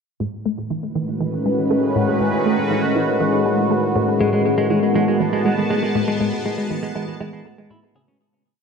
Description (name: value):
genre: ambient, sequencer-driven space music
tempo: 120 BPM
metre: 4/4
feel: straight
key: A lydian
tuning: A4 = 439 Hz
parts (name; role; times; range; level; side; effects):
- sweeping resonant pad; sustained chords; 0.2-8.2 s; A2 to A5; -19 LUFS; equal; chorus
- resonant blip pluck; riff; 0.2-8.1 s; A2 to A3; -24 LUFS; right 1 dB; phaser, tape echo
- clean electric guitar; arpeggios; 4.2-8.2 s; G#3 to G#4; -22 LUFS; moving between left 3 dB and right 4 dB; auto-pan, tape echo
room: wet echo chamber reverb, RT60 2.2 s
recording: echo-heavy mix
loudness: -17 LUFS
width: side -5 dB against mid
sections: 0.2-8.2 A section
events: fade-out 5.5-8.2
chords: 0.2 Amaj7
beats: | 0.21 0.71 1.21 1.71 | 2.21 2.71 3.21 3.71 | 4.21 4.71 5.21 5.71 | 6.21 6.71 7.21 7.71